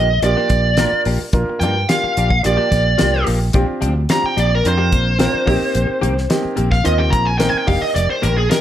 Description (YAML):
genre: electric jazz fusion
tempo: 109 BPM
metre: 4/4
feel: straight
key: Bb major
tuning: A4 = 443 Hz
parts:
  - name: biting lead guitar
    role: melody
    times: 0.0-8.6 s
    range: Ab4 to Bb5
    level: -18 LUFS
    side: right 1 dB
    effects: overdrive
  - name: warm baby grand piano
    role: accompaniment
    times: 0.0-8.6 s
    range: D3 to Bb4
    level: -23 LUFS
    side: right 1 dB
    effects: none
  - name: direct-recorded clean electric guitar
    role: stabs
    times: 0.0-8.4 s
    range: Eb3 to G4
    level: -25 LUFS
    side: left 4 dB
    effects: analog chorus
  - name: fingered electric bass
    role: bass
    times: 0.0-8.5 s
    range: F1 to G2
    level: -18 LUFS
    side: equal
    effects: none
  - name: damped 70s drum kit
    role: drums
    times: 0.2-8.6 s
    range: hi-hat, kick drum, snare drum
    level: -20 LUFS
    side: left 1 dB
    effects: none
room: moderate studio reverb, RT60 0.7 s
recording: dark, warm production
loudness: -14 LUFS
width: side -11 dB against mid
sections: 0.0-8.6 A section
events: lead electric guitar solo 0.0-8.6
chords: 0.0 Bb69; 5.5 Bbsus4; 7.7 F13sus4